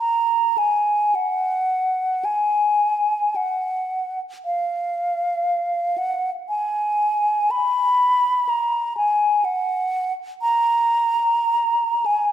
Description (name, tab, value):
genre	classical, free, expressive piece for unaccompanied flute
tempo	48-64 BPM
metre	4/4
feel	rubato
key	unclear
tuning	A4 = 441 Hz
part	mellow hollow silver concert flute	solo	0.0-12.3 s	E#5 to B5	-18 LUFS	equal	none
room	wet recital hall reverb, RT60 1.9 s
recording	none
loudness	-18 LUFS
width	side -11 dB against mid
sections	0.0-12.3 A section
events	none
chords	none